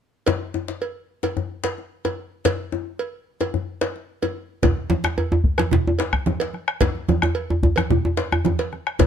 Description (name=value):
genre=west african traditional, West African drum ensemble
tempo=110 BPM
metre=4/4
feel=straight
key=none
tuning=none
part: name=cowbell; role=percussion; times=0.3-9.1 s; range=none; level=-25 LUFS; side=right 6 dB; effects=none
part: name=djembe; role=percussion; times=0.3-9.1 s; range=none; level=-25 LUFS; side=left 8 dB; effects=none
part: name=bombo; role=percussion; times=4.6-9.1 s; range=none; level=-22 LUFS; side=left 2 dB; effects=none
part: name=congas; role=percussion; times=4.6-9.1 s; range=none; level=-25 LUFS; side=right 7 dB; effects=none
part: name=djembe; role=percussion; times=4.6-9.1 s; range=none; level=-21 LUFS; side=right 1 dB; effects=none
room=light reverb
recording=dark, warm production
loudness=-21 LUFS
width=side -8 dB against mid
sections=0.3-4.6 A section; 4.6-9.1 B section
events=none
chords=none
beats=| 0.27 0.81 1.36 1.91 | 2.45 3.00 3.54 4.09 | 4.63 5.18 5.72 6.27 | 6.81 7.36 7.90 8.45 | 8.99